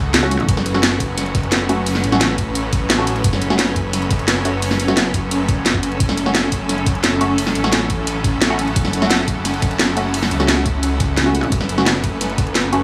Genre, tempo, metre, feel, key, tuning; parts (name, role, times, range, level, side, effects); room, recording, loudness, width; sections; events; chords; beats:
dark technical drum and bass; 174 BPM; 4/4; straight; F# minor; A4 = 440 Hz
clear symphonic string section; sustained chords; 0.0-12.8 s; F#3 to B4; -29 LUFS; equal; sidechain pumping
filtered dub chord stab; stabs; 0.0-12.8 s; A3 to F#4; -25 LUFS; equal; phaser, dub echo
snarling distorted saw bass; bass; 0.0-12.8 s; F#1 to C#2; -25 LUFS; equal; distortion, overdrive
granular cloud pad; texture; 0.0-12.8 s; C#4 to F#5; -26 LUFS; equal; built-in reverb, sidechain pumping
pulsing pluck wobble bass; bass; 0.1-0.5, 11.2-11.5 s; C#2; -21 LUFS; equal; chorus
breakbeat sampler-style drum kit; drums; 0.1-12.8 s; hi-hat, ride cymbal, snare drum; -31 LUFS; equal
drum and bass drum kit; drums; 0.1-12.8 s; hi-hat, snare drum; -21 LUFS; equal
electronic kick drum; drums; 0.5-12.5 s; -22 LUFS; equal
light reverb, digital ambience; studio ambience; -18 LUFS; mono
0.0-12.8 A section
0.0 F#m
0.14 | 0.48 0.83 1.18 1.52 | 1.86 2.21 2.55 2.90 | 3.24 3.59 3.93 4.28 | 4.62 4.97 5.31 5.66 | 6.00 6.35 6.69 7.04 | 7.38 7.73 8.07 8.42 | 8.76 9.11 9.45 9.80 | 10.14 10.48 10.83 11.18 | 11.52 11.87 12.21 12.55